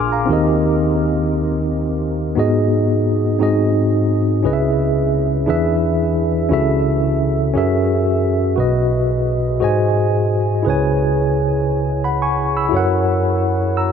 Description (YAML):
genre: gospel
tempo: 58 BPM (dotted quarters)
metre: 6/8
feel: straight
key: unclear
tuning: A4 = 440 Hz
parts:
  - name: tine electric piano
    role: solo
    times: 0.0-13.9 s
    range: Bb1 to F6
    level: -15 LUFS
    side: equal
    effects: fast stereo tremolo, diffuse ambient delay
room: moderate huge ambient reverb, RT60 7.2 s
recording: dreamy mix soaked in reverb, nothing above 7.8 kHz, faint mains hum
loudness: -15 LUFS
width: side -7 dB against mid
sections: 0.0-2.4 A section; 2.4-13.9 A section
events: none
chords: 0.3 Eb6; 2.4 G#m7; 3.4 G#7; 4.4 C#m7; 5.5 E7; 6.5 A6/C#; 7.5 F#9; 8.6 B; 9.6 G#7; 10.7 C#m7; 12.7 F#7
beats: | 0.29 1.33 | 2.37 3.40 | 4.44 5.48 | 6.51 7.55 | 8.59 9.62 | 10.66 11.70 | 12.73 13.77